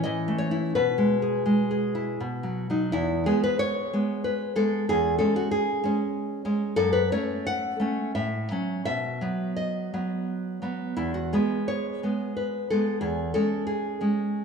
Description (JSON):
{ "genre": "romantic piece for solo classical guitar", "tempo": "78-97 BPM", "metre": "3/4", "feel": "rubato", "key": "E major", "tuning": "A4 = 440 Hz", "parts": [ { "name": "nylon-string guitar", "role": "solo", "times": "0.0-14.4 s", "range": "E2 to F#5", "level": "-24 LUFS", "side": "equal", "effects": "none" } ], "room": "wet recital hall reverb, RT60 1.4 s", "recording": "none", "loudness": "-24 LUFS", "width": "side -5 dB against mid", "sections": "0.0-2.9 A section; 2.9-14.4 B section", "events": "none", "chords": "0.0 A; 0.8 E/B; 2.2 B; 2.9 E; 4.9 C#m/E; 6.8 F#m; 8.1 F#m/A; 8.8 B; 11.0 E; 13.0 C#m/E", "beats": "0.06 | 0.76 1.48 2.20 | 2.93 3.60 4.25 | 4.87 5.50 6.12 | 6.76 7.46 8.14 | 8.83 9.55 10.26 | 10.97 11.71 12.38 | 13.03 13.67 14.31" }